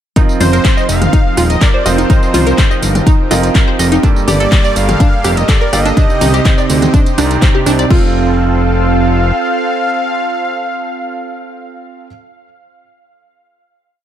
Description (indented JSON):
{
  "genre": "progressive house",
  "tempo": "124 BPM",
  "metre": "4/4",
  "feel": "straight",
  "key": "F mixolydian",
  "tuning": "A4 = 440 Hz",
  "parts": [
    { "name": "lush unison pad", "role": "sustained chords", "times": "0.2-12.1 s", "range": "C3 to C5", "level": "-20 LUFS", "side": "right 1 dB", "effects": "chorus, sidechain pumping" },
    { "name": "analog pluck", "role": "arpeggios", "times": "0.2-8.1 s", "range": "D4 to Eb5", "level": "-19 LUFS", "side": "equal", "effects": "chorus, sidechain pumping, dub echo" },
    { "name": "clear baby grand piano", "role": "stabs", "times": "0.2-12.1 s", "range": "G2 to F5", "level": "-18 LUFS", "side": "right 6 dB", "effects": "sidechain pumping, dub echo" },
    { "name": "electronic kick drum", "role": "drums", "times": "0.2-8.0 s", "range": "none", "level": "-10 LUFS", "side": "left 1 dB", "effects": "none" },
    { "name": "house drum kit", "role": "drums", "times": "0.2-8.0 s", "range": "crash cymbal, handclaps, hi-hat, rim click, tambourine", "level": "-20 LUFS", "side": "equal", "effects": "none" },
    { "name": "wide unison lead", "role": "melody", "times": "0.4-12.1 s", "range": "C5 to F5", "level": "-19 LUFS", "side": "left 1 dB", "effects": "tape echo" },
    { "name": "fat analog bass", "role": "bass", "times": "0.4-9.3 s", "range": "Eb1 to D2", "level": "-14 LUFS", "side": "left 1 dB", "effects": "sidechain pumping" },
    { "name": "electronic toms, bongos and congas", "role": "percussion", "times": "0.4-6.9 s", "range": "none", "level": "-20 LUFS", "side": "equal", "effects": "sidechain pumping on toms, sidechain pumping on perc" }
  ],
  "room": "digital ambience",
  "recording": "none",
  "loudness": "-9 LUFS",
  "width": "side -10 dB against mid",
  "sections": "0.2-7.9 drop; 7.9-11.8 final chord",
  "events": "drop 0.2-7.9",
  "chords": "0.2 F7sus4; 4.0 Gmadd9; 6.0 Cmadd9; 7.9 F"
}